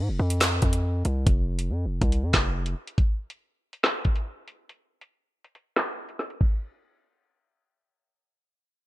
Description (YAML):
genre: hip hop, drill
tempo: 140 BPM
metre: 4/4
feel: half-time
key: F minor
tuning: A4 = 445 Hz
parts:
  - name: distorted 808-style bass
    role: bass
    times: 0.0-2.7 s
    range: F1 to Ab2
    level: -25 LUFS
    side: equal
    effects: distortion
  - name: drill drum kit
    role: drums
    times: 0.3-6.5 s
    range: crash cymbal, handclaps, hi-hat, kick drum, snare drum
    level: -23 LUFS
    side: equal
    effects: none
room: little or no reverb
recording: bright 1980s-style digital production, low-pass filter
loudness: -23 LUFS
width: side -17 dB against mid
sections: 0.0-6.4 A section; 6.4-8.9 B section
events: break 4.7-6.4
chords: none